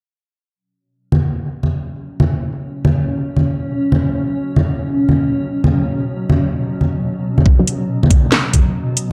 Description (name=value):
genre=deep dubstep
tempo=139 BPM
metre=4/4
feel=swing 62% on 16ths, half-time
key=unclear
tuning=A4 = 441 Hz
part: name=granular cloud pad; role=sustained chords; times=2.3-9.1 s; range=B2 to C#4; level=-23 LUFS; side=equal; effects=built-in reverb
part: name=congas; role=percussion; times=1.1-8.6 s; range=none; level=-19 LUFS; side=equal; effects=none
part: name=electronic kick drum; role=drums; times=7.5-8.6 s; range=none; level=-14 LUFS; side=equal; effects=none
part: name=filtered dub chord stab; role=stabs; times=7.6 s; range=F#3 to D4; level=-23 LUFS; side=equal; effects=phaser, dub echo
part: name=garage drum kit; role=drums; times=7.7-9.1 s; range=hi-hat, snare drum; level=-18 LUFS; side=equal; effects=none
room=moderate digital room reverb, RT60 1.1 s, digital ambience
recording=dark, warm production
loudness=-17 LUFS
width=mono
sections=0.6-9.1 A section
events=filter sweep on ambient pad 0.6-9.1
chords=0.6 B5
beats=| 0.55 0.98 1.42 1.85 | 2.28 2.71 3.14 3.57 | 4.00 4.44 4.87 5.30 | 5.73 6.16 6.59 7.03 | 7.46 7.89 8.32 8.75